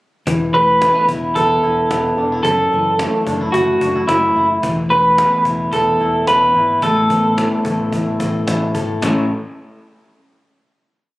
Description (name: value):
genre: jangly indie pop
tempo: 109 BPM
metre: 4/4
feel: straight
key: unclear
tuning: A4 = 440 Hz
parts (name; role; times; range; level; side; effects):
- electric guitar through a small old amp; arpeggios; 0.3-9.3 s; F#2 to A4; -20 LUFS; left 1 dB; none
- vintage muted fingered electric bass; bass; 0.3-9.3 s; E1 to A1; -26 LUFS; equal; none
- cajon; drums; 0.3-9.2 s; none; -26 LUFS; equal; none
- electric guitar through a small old amp; melody; 0.5-8.4 s; E4 to B4; -14 LUFS; equal; analog delay
room: moderate echo chamber reverb, RT60 1.6 s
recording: recorded on a phone in the room, club reverb, compression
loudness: -13 LUFS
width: side -19 dB against mid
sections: 0.3-9.0 interlude; 9.0-11.2 final chord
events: none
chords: 0.3 Esus4; 2.4 F#m7; 4.6 Esus4; 6.8 Asus2; 9.0 A